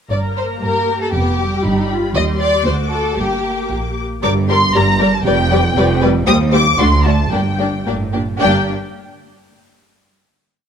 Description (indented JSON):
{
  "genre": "quick classical-period movement for string orchestra",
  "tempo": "116 BPM",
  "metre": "2/4",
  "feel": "straight",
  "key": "G minor",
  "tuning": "A4 = 436 Hz",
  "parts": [
    { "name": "rich studio violin section", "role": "melody", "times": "0.1-8.7 s", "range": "G5 to Eb6", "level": "-20 LUFS", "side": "left 2 dB", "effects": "none" },
    { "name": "warm symphonic violin section", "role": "second line", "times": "0.1-8.7 s", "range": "F#4 to Eb5", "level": "-20 LUFS", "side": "left 2 dB", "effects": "none" },
    { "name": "rich symphonic viola section", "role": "accompaniment", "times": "0.1-8.7 s", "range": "G3 to Bb4", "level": "-21 LUFS", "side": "equal", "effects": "none" },
    { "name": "rich symphonic cello section", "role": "bass", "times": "0.1-8.7 s", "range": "D2 to G3", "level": "-20 LUFS", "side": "right 2 dB", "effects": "none" },
    { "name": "rich symphonic double bass section", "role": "bass", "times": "0.1-8.7 s", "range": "F1 to G2", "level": "-20 LUFS", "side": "right 2 dB", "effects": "none" }
  ],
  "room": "light reverb",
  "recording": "close, detailed microphones",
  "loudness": "-13 LUFS",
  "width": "side -7 dB against mid",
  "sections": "0.1-4.2 A section; 4.2-8.4 A section; 8.4-9.5 final chord",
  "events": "none",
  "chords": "0.1 Gm; 1.1 G7/F; 2.2 Cm/Eb; 2.7 D; 3.2 Gm; 5.3 G7/F; 6.3 Cm/Eb (rootless); 6.8 D7(no3); 7.3 Gm"
}